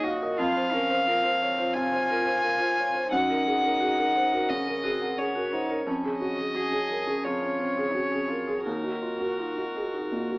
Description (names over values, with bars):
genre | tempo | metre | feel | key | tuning
neoclassical piano and strings | 87 BPM | 4/4 | rubato | Db major | A4 = 440 Hz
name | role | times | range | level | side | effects
warm cello | second line | 0.0-10.4 s | C4 to Ab4 | -34 LUFS | right 1 dB | none
felt-muted upright piano | accompaniment | 0.0-10.4 s | Eb2 to F5 | -29 LUFS | equal | none
vibraphone with medium mallets | arpeggios | 0.0-10.2 s | Db4 to Gb5 | -34 LUFS | equal | slapback echo
rich violin | melody | 0.4-10.4 s | Bb4 to Ab5 | -27 LUFS | left 1 dB | none
room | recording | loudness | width
moderate studio reverb, RT60 0.5 s | AM radio sound | -24 LUFS | side -25 dB against mid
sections
0.0-10.4 A section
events
none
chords
0.4 Fm; 3.1 Gb; 5.9 Db/F; 8.7 Ebm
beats
| 0.38 1.06 1.75 2.42 | 3.11 3.80 4.49 5.17 | 5.86 6.54 7.24 7.94 | 8.65 9.38 10.11